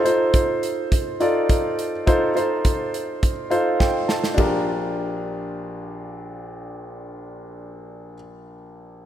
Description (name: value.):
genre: piano-driven pop.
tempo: 104 BPM.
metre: 4/4.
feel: straight.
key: Bb major.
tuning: A4 = 441 Hz.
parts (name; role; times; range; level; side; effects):
clear concert grand piano; accompaniment; 0.0-9.1 s; Bb1 to A5; -22 LUFS; equal; none.
modern studio drum kit; drums; 0.1-4.5 s; hi-hat, kick drum, ride cymbal, snare drum; -22 LUFS; equal; none.
room: moderate lush hall reverb, RT60 2.4 s.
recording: rough home demo mix.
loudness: -19 LUFS.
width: side -11 dB against mid.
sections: 0.0-4.4 A section; 4.4-6.7 B section.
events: grand piano fill 3.2-4.4; drum fill 3.8-4.4.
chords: 0.0 F7; 4.4 Bb6.